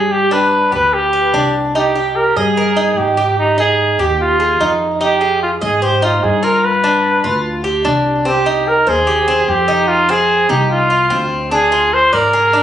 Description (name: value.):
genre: latin, Cuban son and guajira.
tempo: 147 BPM.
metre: 4/4.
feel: straight.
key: C minor.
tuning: A4 = 440 Hz.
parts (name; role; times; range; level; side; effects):
breathy trumpet; melody; 0.0-12.6 s; Eb4 to C5; -13 LUFS; right 1 dB; none.
Cuban tres; arpeggios; 0.0-12.6 s; C4 to Eb5; -17 LUFS; right 1 dB; analog delay.
upright bass; bass; 0.0-12.6 s; C2 to Ab2; -22 LUFS; left 2 dB; none.
room: moderate studio reverb, RT60 0.6 s.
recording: recorded on a phone in the room, studio ambience, nothing above 10.9 kHz.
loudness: -12 LUFS.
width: side -10 dB against mid.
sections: 0.0-8.3 A section; 8.3-12.6 A section.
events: none.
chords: 0.1 G; 1.7 Cm; 3.4 Ab5; 5.0 Fm7; 6.6 G7; 8.3 Cm; 9.9 Fm7; 11.5 Ddim.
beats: | 0.11 0.52 0.93 1.34 | 1.75 2.15 2.56 2.97 | 3.38 3.79 4.19 4.60 | 5.01 5.42 5.82 6.23 | 6.64 7.04 7.45 7.86 | 8.27 8.67 9.08 9.48 | 9.89 10.30 10.71 11.12 | 11.52 11.93 12.34.